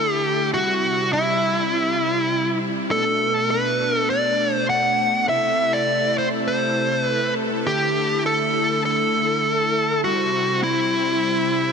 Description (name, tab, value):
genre	synthwave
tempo	101 BPM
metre	4/4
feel	straight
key	unclear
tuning	A4 = 441 Hz
part	dark smooth lead guitar	melody	0.0-11.7 s	E4 to F#5	-19 LUFS	equal	overdrive, shimmer reverb, digital delay
part	soft supersaw	sustained chords	0.0-11.7 s	B2 to C5	-24 LUFS	equal	vintage 12-bit sampler grit, shimmer reverb
room	moderate lush hall reverb, RT60 2.1 s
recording	dense, heavily limited modern master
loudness	-18 LUFS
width	side -6 dB against mid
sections	0.0-11.7 A section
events	none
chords	0.0 Dsus2; 0.5 C; 2.9 Bm7; 5.3 Am; 7.7 Dsus2; 10.0 C